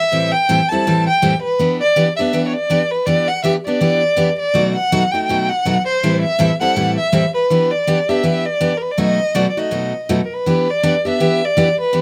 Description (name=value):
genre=jazz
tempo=162 BPM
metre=4/4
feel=swing 61% on 8ths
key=E minor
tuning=A4 = 442 Hz
part: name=rich violin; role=melody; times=0.0-12.0 s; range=A#4 to A5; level=-19 LUFS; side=equal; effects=none
part: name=picked steel-string acoustic guitar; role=accompaniment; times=0.1-12.0 s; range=A2 to A4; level=-19 LUFS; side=equal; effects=none
room=light reverb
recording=close, detailed microphones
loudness=-16 LUFS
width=mono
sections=0.0-10.5 A section; 10.5-12.0 A section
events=none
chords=0.0 Am7; 1.6 Em7; 4.5 B7; 6.0 Am7; 7.5 Em7; 9.0 B7; 10.5 Em7